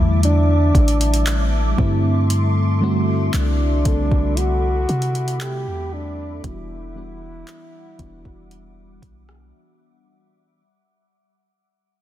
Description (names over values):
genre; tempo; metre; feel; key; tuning
contemporary R&B; 58 BPM; 4/4; straight; E minor; A4 = 440 Hz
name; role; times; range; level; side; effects
breathy trombone; melody; 0.0-9.5 s; D4 to G4; -25 LUFS; equal; digital delay
mellow FM electric piano; accompaniment; 0.0-10.6 s; D3 to A4; -24 LUFS; left 1 dB; chorus, phaser
glassy FM pad; sustained chords; 0.0-10.5 s; G3 to D6; -30 LUFS; equal; ensemble chorus, built-in reverb
warm 808-style bass; bass; 0.0-9.5 s; E1 to C3; -20 LUFS; equal; none
smooth R&B drum kit; drums; 0.2-9.5 s; handclaps, hi-hat, kick drum, rim click; -21 LUFS; equal; none
room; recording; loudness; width
little or no reverb; dense, heavily limited modern master; -16 LUFS; side -12 dB against mid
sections
0.0-10.6 A section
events
fade-out 0.0-10.6; break 9.5-10.6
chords
0.0 A7sus4; 1.8 C69; 6.4 Em9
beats
0.23 1.27 | 2.30 3.34 4.37 5.41 | 6.44 7.47 8.51 9.54